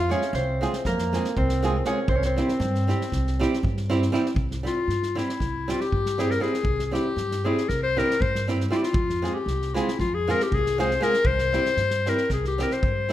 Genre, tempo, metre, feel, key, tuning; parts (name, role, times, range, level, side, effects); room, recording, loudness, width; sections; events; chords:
balkan folk, Balkan wedding band; 235 BPM (eighths); 9/8; straight; C phrygian dominant; A4 = 439 Hz
concert harp; melody; 0.0-4.2 s; Bb4 to F5; -29 LUFS; right 2 dB
clear clarinet; second line; 0.0-13.1 s; Bb3 to C5; -26 LUFS; left 4 dB
upright bass; bass; 0.0-13.1 s; C2 to G2; -28 LUFS; equal
flamenco guitar; accompaniment; 0.1-13.1 s; G3 to Ab4; -28 LUFS; right 3 dB
unplugged drum kit; percussion; 0.1-13.1 s; kick drum, snare drum; -30 LUFS; equal
moderate recital hall reverb, RT60 1.4 s; -22 LUFS; side -13 dB against mid
0.0-4.4 A section; 4.4-13.1 B section
clarinet solo 4.4-13.1
0.0 Fm; 2.1 C; 8.9 Fm; 11.3 C